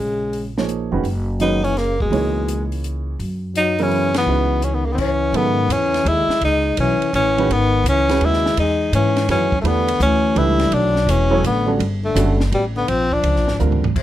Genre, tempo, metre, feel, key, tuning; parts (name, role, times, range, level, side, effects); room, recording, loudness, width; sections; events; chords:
modal jazz; 167 BPM; 3/4; swing 66% on 8ths; C# phrygian from 5.3 s; A4 = 439 Hz
warm tenor saxophone; melody; 0.0-13.6 s; G3 to E4; -19 LUFS; equal
breathy trombone; second line; 0.0-13.6 s; Cb3 to G#3; -24 LUFS; left 6 dB
upright bass; bass; 0.0-14.0 s; E1 to G#2; -21 LUFS; equal
compact cocktail drum kit; drums; 0.3-14.0 s; crash cymbal, hi-hat, kick drum, ride cymbal, snare drum, toms; -28 LUFS; right 1 dB
warm upright piano; accompaniment; 0.6-13.8 s; Db3 to E5; -23 LUFS; right 5 dB
light reverb; -16 LUFS; side -13 dB against mid
0.0-5.3 A section; 5.3-14.0 B section
band accent 4.1; drum fill 13.6-14.0
0.0 Eb9sus4; 1.0 Gb9sus4; 5.3 C#m9; 9.6 Em9; 12.9 A#